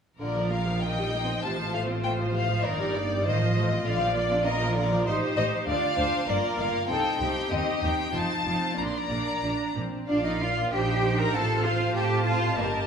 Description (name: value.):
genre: quick classical-period movement for string orchestra.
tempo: 98 BPM.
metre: 2/4.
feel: rubato.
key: Bb major.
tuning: A4 = 439 Hz.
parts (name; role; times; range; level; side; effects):
rich chamber violin section; melody; 0.2-12.9 s; Bb4 to C6; -30 LUFS; left 3 dB; none.
rich symphonic violin section; second line; 0.2-12.9 s; F4 to A5; -32 LUFS; left 1 dB; none.
rich chamber viola section; accompaniment; 0.2-12.9 s; C3 to G4; -30 LUFS; right 1 dB; none.
clear studio cello section; bass; 0.2-12.6 s; C2 to Bb4; -32 LUFS; right 2 dB; none.
warm symphonic double bass section; bass; 0.2-12.9 s; F1 to A2; -30 LUFS; right 2 dB; none.
room: wet scoring stage reverb, RT60 1.7 s.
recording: small room ambience.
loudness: -24 LUFS.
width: side -7 dB against mid.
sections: 0.2-10.1 A section; 10.1-12.9 B section.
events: none.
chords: 0.2 Bb; 0.8 Cm7/Bb; 1.4 F/A; 2.7 Eb/G; 3.3 F7/A; 3.9 Bb; 5.1 Am7b5; 5.7 Dm; 6.3 Gm7; 6.9 Cm; 7.5 Cm/Eb; 8.1 F7; 8.8 Bb; 10.7 Cm7/Bb; 11.3 F/A.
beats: | 0.19 0.82 | 1.44 2.05 | 2.66 3.27 | 3.87 4.47 | 5.07 5.67 | 6.28 6.89 | 7.50 8.14 | 8.78 9.43 | 10.08 10.71 | 11.34 11.95 | 12.56.